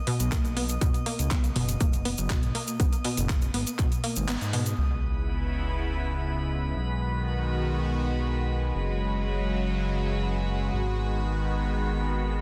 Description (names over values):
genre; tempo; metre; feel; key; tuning
progressive house; 121 BPM; 4/4; straight; B major; A4 = 437 Hz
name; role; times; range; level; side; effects
drifting glass-harmonics texture; texture; 0.0-12.4 s; B4 to D#6; -41 LUFS; equal; chorus, built-in reverb, sidechain pumping
unison pluck; arpeggios; 0.1-4.6 s; B2 to B3; -33 LUFS; equal; sidechain pumping, tape echo
pop drum kit; drums; 0.1-4.8 s; handclaps, hi-hat; -37 LUFS; equal; low-pass filter on hats, soft clipping on snare, low-pass filter on snare
fat analog bass; bass; 0.2-12.4 s; F#1 to G#2; -32 LUFS; equal; tube saturation, sidechain pumping
egg shaker; percussion; 0.2-4.8 s; none; -40 LUFS; equal; none
electronic kick drum; drums; 0.3-3.9 s; none; -28 LUFS; equal; none
supersaw pad; sustained chords; 4.8-12.4 s; C#3 to F#4; -33 LUFS; equal; phaser, sidechain pumping
sub drop; sound effects; 4.8-6.8 s; none; -34 LUFS; equal; none
room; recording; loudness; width
light reverb; dense, heavily limited modern master; -28 LUFS; mono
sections
0.0-4.8 A section; 4.8-12.4 B section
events
kick drops out 4.3-4.8; band accent 4.3; impact 4.8-6.8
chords
0.0 B; 0.8 F#5; 2.8 G#m7; 4.8 C#m7; 6.8 B6; 8.7 F#sus2; 10.7 G#m7